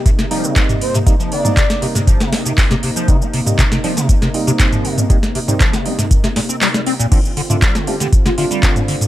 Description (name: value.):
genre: acid house.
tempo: 119 BPM.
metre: 4/4.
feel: straight.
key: unclear.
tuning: A4 = 440 Hz.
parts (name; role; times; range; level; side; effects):
warm analog pad; sustained chords; 0.0-9.1 s; C3 to F4; -25 LUFS; equal; chorus, sidechain pumping.
liquid acid bass; riff; 0.1-9.0 s; Bb2 to F4; -21 LUFS; left 1 dB; phaser, tube saturation, ensemble chorus, tape echo.
booming analog drum machine; drums; 0.1-9.1 s; cabasa, crash cymbal, handclaps, hi-hat, snare drum, toms; -18 LUFS; equal; overdrive.
electronic kick drum; drums; 0.1-8.7 s; none; -14 LUFS; equal; overdrive.
percussive organ stab; stabs; 0.3-9.1 s; G3 to F4; -24 LUFS; right 3 dB; analog chorus, tape echo.
breathy flute-like synth lead; melody; 0.8-1.8, 7.9-8.5 s; F4 to D5; -24 LUFS; left 1 dB; analog chorus, analog delay.
room: little or no reverb.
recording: none.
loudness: -13 LUFS.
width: side -14 dB against mid.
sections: 0.0-9.1 A section.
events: kick drops out 6.6-7.1.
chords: 0.0 Cm7; 7.1 Dm7.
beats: 0.06 0.56 | 1.07 1.57 2.08 2.58 | 3.08 3.59 4.09 4.60 | 5.10 5.60 6.11 6.61 | 7.12 7.62 8.12 8.63.